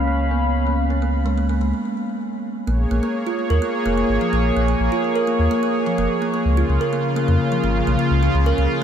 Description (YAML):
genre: IDM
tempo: 127 BPM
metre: 4/4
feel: straight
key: Bb phrygian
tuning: A4 = 438 Hz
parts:
  - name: warm analog pad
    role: sustained chords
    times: 0.0-8.8 s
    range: Db3 to Cb6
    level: -22 LUFS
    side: left 1 dB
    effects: chorus
  - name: warm sub bass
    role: bass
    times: 0.0-8.7 s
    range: F1 to F2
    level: -20 LUFS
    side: equal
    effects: none
  - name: kalimba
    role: arpeggios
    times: 0.1-8.7 s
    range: F3 to Bb4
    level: -23 LUFS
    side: right 2 dB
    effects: ping-pong delay
room: moderate huge ambient reverb, RT60 6.6 s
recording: dreamy mix soaked in reverb, low-pass filter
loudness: -18 LUFS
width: side -8 dB against mid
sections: 0.0-2.7 A section; 2.7-8.8 B section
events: filter sweep 0.0-2.7; break 1.7-2.7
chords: 0.0 Db7; 2.7 Bbm7; 6.5 Db